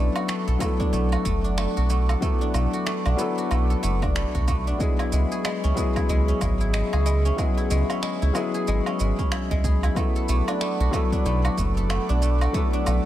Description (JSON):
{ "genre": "organic downtempo", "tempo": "93 BPM", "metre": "4/4", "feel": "swing 59% on 16ths", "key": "B dorian", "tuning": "A4 = 440 Hz", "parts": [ { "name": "felt-muted upright piano", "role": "accompaniment", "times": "0.0-13.1 s", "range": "F#3 to A4", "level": "-28 LUFS", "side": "left 4 dB", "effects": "sidechain pumping, low-pass filter, digital delay" }, { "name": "warm analog pad", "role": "sustained chords", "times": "0.0-13.1 s", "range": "G#4 to D6", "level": "-33 LUFS", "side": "equal", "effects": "chorus, sidechain pumping" }, { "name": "guzheng", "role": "arpeggios", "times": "0.0-13.1 s", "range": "G#3 to A4", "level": "-29 LUFS", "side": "equal", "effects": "digital delay" }, { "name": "round analog bass", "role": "bass", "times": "0.0-13.0 s", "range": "F#1 to C#2", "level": "-22 LUFS", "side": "right 1 dB", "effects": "none" }, { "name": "electronic woodblock, shaker and finger snaps", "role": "drums", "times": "0.2-13.0 s", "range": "none", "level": "-33 LUFS", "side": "right 2 dB", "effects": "overdrive" }, { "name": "electronic kick drum", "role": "drums", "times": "0.6-12.7 s", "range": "none", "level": "-26 LUFS", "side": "right 1 dB", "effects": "overdrive" } ], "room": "light reverb", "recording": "none", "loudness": "-21 LUFS", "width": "side -13 dB against mid", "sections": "0.0-13.1 A section", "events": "none", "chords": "0.0 Bm7; 4.8 C#m7; 10.0 Bm7", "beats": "0.29 0.93 1.58 | 2.22 2.87 3.51 4.16 | 4.80 5.45 6.09 6.74 | 7.38 8.03 8.67 9.32 | 9.96 10.61 11.26 11.90 | 12.54" }